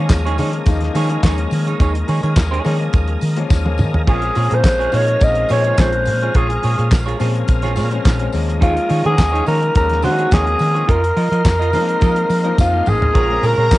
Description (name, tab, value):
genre	disco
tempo	106 BPM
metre	4/4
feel	straight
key	Bb minor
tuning	A4 = 440 Hz
part	clear grand piano	accompaniment	0.0-13.8 s	F3 to F4	-25 LUFS	left 6 dB	none
part	semi-hollow electric guitar	accompaniment	0.0-13.7 s	Eb4 to Eb5	-25 LUFS	right 5 dB	wide subtle chorus
part	overdriven tonewheel organ	sustained chords	0.0-13.8 s	Db3 to C6	-29 LUFS	equal	chorus vibrato, slow rotary speaker
part	fingered electric bass	bass	0.0-13.8 s	A1 to F3	-19 LUFS	equal	none
part	damped 70s drum kit	drums	0.1-13.8 s	crash cymbal, handclaps, hi-hat, kick drum, snare drum, toms	-17 LUFS	equal	none
part	tambourine	percussion	0.1-13.8 s	none	-39 LUFS	left 7 dB	none
part	growling alto saxophone	melody	4.1-13.8 s	F4 to Eb5	-17 LUFS	equal	cassette tape
part	clear studio string section	second line	13.2-13.8 s	Bb4 to Bb5	-21 LUFS	right 1 dB	none
room	light reverb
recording	home recording on cassette, nothing above 10.4 kHz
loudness	-14 LUFS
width	side -17 dB against mid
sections	0.0-13.2 A section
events	drum fill 3.5-4.1, 12.6-13.2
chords	0.0 Eb7sus4; 4.1 Bbm7; 8.3 Eb7sus4; 10.9 F7sus4; 13.2 Bbm7